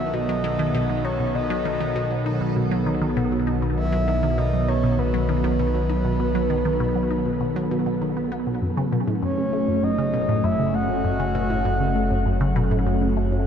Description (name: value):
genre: ambient, sequencer-driven space music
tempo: 99 BPM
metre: 4/4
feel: straight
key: F# dorian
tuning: A4 = 435 Hz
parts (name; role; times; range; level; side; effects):
- breathy flute-like synth lead; melody; 0.0-12.6 s; B4 to F#5; -27 LUFS; left 1 dB; chorus, shimmer reverb, tape echo
- sweeping resonant pad; sustained chords; 0.0-13.5 s; D#3 to C#4; -25 LUFS; right 1 dB; chorus, shimmer reverb
- resonant blip pluck; riff; 0.0-13.5 s; F#2 to D#4; -26 LUFS; equal; phaser, tape echo
- analog drone; bass; 0.0-13.5 s; F#1 to B1; -26 LUFS; equal; chorus
- bubbling stepped-filter texture; texture; 0.0-8.6 s; A4; -39 LUFS; right 4 dB; chorus, built-in reverb, shimmer reverb
room: wet huge ambient reverb, RT60 7.4 s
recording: dark, warm production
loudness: -20 LUFS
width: side -8 dB against mid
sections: 0.0-8.6 A section; 8.6-13.5 B section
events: none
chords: 0.0 B; 8.6 F#m